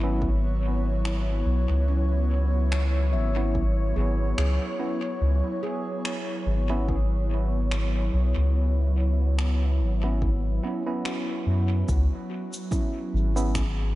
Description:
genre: ambient dub.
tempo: 72 BPM.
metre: 4/4.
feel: swing 56% on 16ths.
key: C# minor.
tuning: A4 = 440 Hz.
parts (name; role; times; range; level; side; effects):
airy breathy pad; sustained chords; 0.0-14.0 s; F#3 to C#5; -31 LUFS; equal; chorus.
handpan; arpeggios; 0.0-14.0 s; C#4 to E5; -39 LUFS; equal; tape echo.
tine electric piano; stabs; 0.0-13.6 s; B3 to E4; -33 LUFS; right 2 dB; analog chorus, dub echo.
soft dub sub bass; bass; 0.0-14.0 s; G#1 to F#2; -23 LUFS; equal; none.
electronic kick drum; drums; 0.2-13.7 s; none; -29 LUFS; equal; overdrive.
finger snaps and cabasa; drums; 1.1-13.7 s; none; -37 LUFS; right 1 dB; dub echo.
room: studio reverb.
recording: echo-heavy mix, nothing above 10.9 kHz.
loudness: -23 LUFS.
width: side -17 dB against mid.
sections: 0.0-11.9 A section; 11.9-14.0 B section.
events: none.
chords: 0.0 C#m7.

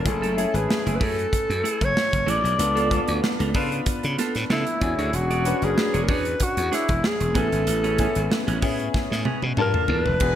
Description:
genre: polished 1980s jazz-funk pop.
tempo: 94 BPM.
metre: 4/4.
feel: swing 54% on 16ths.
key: F# minor.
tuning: A4 = 440 Hz.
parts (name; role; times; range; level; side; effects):
mellow alto saxophone; melody; 0.0-10.4 s; E4 to D5; -25 LUFS; left 1 dB; none.
clear concert grand piano; accompaniment; 0.0-10.4 s; A3 to A5; -28 LUFS; left 3 dB; wide subtle chorus.
clean electric guitar; riff; 0.1-10.2 s; A3 to D5; -31 LUFS; right 5 dB; lush chorus.
glassy slap bass; bass; 0.1-10.4 s; E1 to C#3; -26 LUFS; equal; none.
modern studio drum kit; drums; 0.1-10.4 s; crash cymbal, hi-hat, kick drum, snare drum, toms; -26 LUFS; equal; gated reverb.
room: moderate plate reverb, RT60 1.5 s, studio reverb.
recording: bright 1980s-style digital production.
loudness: -20 LUFS.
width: side -10 dB against mid.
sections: 0.0-10.2 A section.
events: drum fill 8.9-10.2.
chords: 0.1 F#m9; 2.6 C#7b9b13; 4.8 E13; 7.4 Amaj9; 9.6 Gm9.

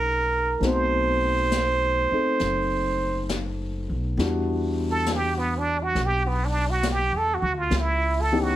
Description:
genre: jazz ballad.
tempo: 68 BPM.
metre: 4/4.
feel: swing 68% on 8ths.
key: E minor from 4.2 s.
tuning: A4 = 440 Hz.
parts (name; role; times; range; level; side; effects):
trumpet with plunger mute; melody; 0.0-8.6 s; B3 to C5; -24 LUFS; right 3 dB; none.
dark grand piano; accompaniment; 0.0-8.6 s; E3 to C#5; -28 LUFS; left 3 dB; none.
upright bass; bass; 0.0-8.6 s; F#1 to E2; -27 LUFS; equal; none.
jazz brush drum kit; drums; 0.6-8.6 s; brushed snare drum, hi-hat, snare drum; -33 LUFS; left 3 dB; none.
room: moderate studio reverb, RT60 0.8 s.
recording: heavily compressed radio sound.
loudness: -22 LUFS.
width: side -13 dB against mid.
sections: 0.0-4.2 A section; 4.2-8.6 B section.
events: muted trumpet solo 4.2-8.6.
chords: 0.0 G#m11; 0.6 B7b9; 4.2 Em9; 7.7 C#m7b5.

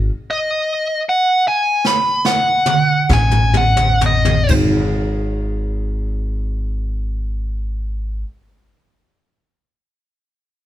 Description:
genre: slow blues.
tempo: 41-53 BPM (dotted quarters).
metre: 12/8.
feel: straight.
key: unclear.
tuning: A4 = 439 Hz.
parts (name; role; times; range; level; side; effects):
upright bass; bass; 0.0-8.2 s; Ab1 to A1; -18 LUFS; equal; none.
biting lead guitar; melody; 0.3-4.5 s; Eb5 to Cb6; -15 LUFS; equal; overdrive.
jazz brush drum kit; drums; 1.8-4.7 s; crash cymbal, kick drum, snare drum, toms; -18 LUFS; equal; none.
room: moderate stone room reverb, RT60 1.3 s.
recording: band playing live in one room.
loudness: -15 LUFS.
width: side -12 dB against mid.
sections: 0.0-4.5 A section; 4.5-10.4 B section.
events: slowing down 0.0-4.5; lead electric guitar solo 0.0-4.5; stop 0.0-3.1; drum fill 1.8-4.5.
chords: 0.0 Ab5; 3.1 Gbm69/A; 4.5 N.C..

